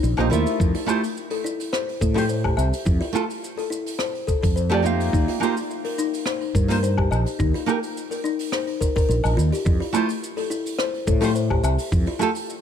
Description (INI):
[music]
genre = sunset chillout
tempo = 106 BPM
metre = 4/4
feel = swing 54% on 16ths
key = F major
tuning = A4 = 440 Hz
[part]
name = kalimba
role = arpeggios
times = 0.0-12.2 s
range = Eb4 to E5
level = -26 LUFS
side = left 5 dB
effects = tape echo
[part]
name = mellow fretless electric bass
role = bass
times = 0.0-12.0 s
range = Bb1 to A2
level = -22 LUFS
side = equal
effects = lush chorus
[part]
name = jazz brush drum kit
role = drums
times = 0.0-12.6 s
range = hi-hat, rim click, shaker, woodblock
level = -32 LUFS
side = left 1 dB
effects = none
[part]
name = nylon-string guitar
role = accompaniment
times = 0.2-12.3 s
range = A3 to F5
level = -25 LUFS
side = moving between left 1 dB and right 6 dB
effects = auto-pan, tape echo
[part]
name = electronic kick drum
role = drums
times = 0.6-12.0 s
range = none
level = -22 LUFS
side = equal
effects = none
[sound]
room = light reverb, studio reverb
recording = none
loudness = -20 LUFS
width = side -8 dB against mid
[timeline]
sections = 0.0-12.6 A section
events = none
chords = 0.0 Eb69; 0.6 Fmaj9; 5.1 Ebadd9; 9.7 Fmaj9